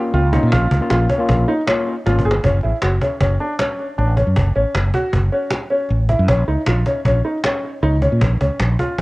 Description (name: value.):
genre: progressive instrumental, band music in an uneven meter.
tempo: 156 BPM.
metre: 5/4.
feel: straight.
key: unclear.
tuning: A4 = 443 Hz.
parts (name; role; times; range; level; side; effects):
overdriven tine electric piano; accompaniment; 0.0-2.3 s; A#3 to E#4; -21 LUFS; left 2 dB; wide subtle chorus.
clear baby grand piano; arpeggios; 0.1-9.0 s; C#4 to G#4; -20 LUFS; equal; tape echo.
mellow fretless electric bass; bass; 0.1-9.0 s; F#1 to A#2; -16 LUFS; equal; none.
cajon; drums; 0.1-9.0 s; none; -22 LUFS; equal; cassette tape.
room: light reverb, small room ambience.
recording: home recording on cassette.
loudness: -15 LUFS.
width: side -21 dB against mid.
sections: 0.0-2.4 A section; 2.4-9.0 B section.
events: drum fill 2.1-2.4.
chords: 0.0 A#m; 2.4 F#m; 6.3 A#m.